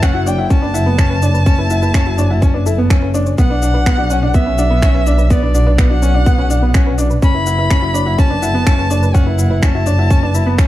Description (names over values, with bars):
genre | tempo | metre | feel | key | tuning
piano and strings electronica | 125 BPM | 4/4 | straight | unclear | A4 = 439 Hz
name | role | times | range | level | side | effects
dark violin | melody | 0.0-10.7 s | D5 to B5 | -21 LUFS | equal | none
bright grand piano | riff | 0.0-10.7 s | B3 to E4 | -19 LUFS | left 1 dB | digital delay
dark chamber double bass section | bass | 0.0-10.7 s | F#1 to B1 | -15 LUFS | equal | sidechain pumping
electronic finger snaps and shaker | drums | 0.0-10.7 s | none | -25 LUFS | equal | overdrive
electronic kick drum | drums | 0.0-10.7 s | none | -13 LUFS | equal | overdrive
soft round pluck | arpeggios | 0.1-10.5 s | B3 to B5 | -27 LUFS | left 1 dB | chorus, sidechain pumping, digital delay
room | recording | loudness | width
small room ambience | dark, warm production | -11 LUFS | side -14 dB against mid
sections
0.0-10.7 A section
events
none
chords
0.0 F#m7; 3.4 Bm; 7.2 F#m7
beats
0.03 0.51 0.99 | 1.47 1.95 2.43 2.91 | 3.39 3.87 4.35 4.83 | 5.31 5.79 6.27 6.75 | 7.23 7.71 8.19 8.67 | 9.15 9.63 10.11 10.59